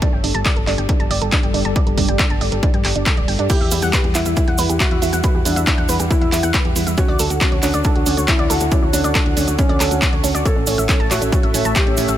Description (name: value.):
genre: uplifting trance.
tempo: 138 BPM.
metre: 4/4.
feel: straight.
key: E dorian.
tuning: A4 = 441 Hz.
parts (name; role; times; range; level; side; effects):
lush unison pad; sustained chords; 0.0-12.2 s; G3 to F#5; -25 LUFS; equal; chorus, phaser, sidechain pumping.
analog pluck; arpeggios; 0.0-12.1 s; C#4 to A5; -24 LUFS; right 4 dB; chorus, cassette tape, sidechain pumping, dub echo.
electronic kick drum; drums; 0.0-11.8 s; none; -18 LUFS; equal; none.
punchy analog drum machine; drums; 0.0-12.2 s; crash cymbal, handclaps, hi-hat; -23 LUFS; equal; sidechain pumping on hats, sidechain pumping on cymbals.
solid FM bass; bass; 0.1-12.2 s; D1 to G2; -22 LUFS; equal; sidechain pumping.
felt-muted upright piano; second line; 3.5-12.2 s; C#4 to A4; -23 LUFS; left 1 dB; dub echo.
tube shaker; percussion; 3.5-12.2 s; none; -27 LUFS; right 3 dB; none.
room: digital ambience.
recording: none.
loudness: -14 LUFS.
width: side -12 dB against mid.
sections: 0.0-12.2 A section.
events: filter sweep on synth pluck 0.0-12.2; filter sweep on analog synth pad 0.0-12.2.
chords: 0.0 Gsus2; 3.5 Emadd9; 7.0 Dmaj7; 10.5 A.